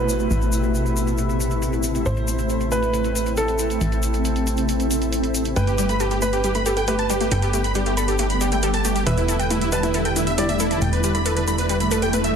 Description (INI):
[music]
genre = uplifting trance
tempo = 137 BPM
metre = 4/4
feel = straight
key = A minor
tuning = A4 = 441 Hz
[part]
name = clear grand piano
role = second line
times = 0.0-12.4 s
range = A4 to D5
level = -28 LUFS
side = right 3 dB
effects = digital delay
[part]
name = shimmering ambient pad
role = sustained chords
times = 0.0-12.4 s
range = B2 to G4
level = -25 LUFS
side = left 1 dB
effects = chorus, built-in reverb
[part]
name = plucky analog bass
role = bass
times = 0.0-12.4 s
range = E1 to A1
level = -24 LUFS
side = equal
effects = none
[part]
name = electronic hi-hat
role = drums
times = 0.1-12.3 s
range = none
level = -32 LUFS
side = right 4 dB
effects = low-pass filter on hats, low-pass filter on cymbals, low-pass filter on snare
[part]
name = egg shaker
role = percussion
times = 0.1-12.3 s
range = none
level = -32 LUFS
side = left 5 dB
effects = none
[part]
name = dense compressed supersaw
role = melody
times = 5.6-12.3 s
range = E4 to B5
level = -24 LUFS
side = right 1 dB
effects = tape echo
[part]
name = wide unison pluck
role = arpeggios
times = 5.6-12.2 s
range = G3 to A4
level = -27 LUFS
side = left 2 dB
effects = flanger, ping-pong delay
[part]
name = swell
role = sound effects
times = 11.9-12.4 s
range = none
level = -24 LUFS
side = right 3 dB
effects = none
[sound]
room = light reverb, digital ambience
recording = dense, heavily limited modern master, lossy compression artefacts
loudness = -19 LUFS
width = side -7 dB against mid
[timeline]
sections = 0.0-12.4 A section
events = swell 11.9-12.4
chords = 0.0 Amadd9; 5.6 G; 9.1 Em7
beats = | 0.31 0.75 1.18 1.62 | 2.06 2.50 2.94 3.37 | 3.81 4.25 4.69 5.13 | 5.56 6.00 6.44 6.88 | 7.32 7.75 8.19 8.63 | 9.07 9.51 9.94 10.38 | 10.82 11.26 11.70 12.13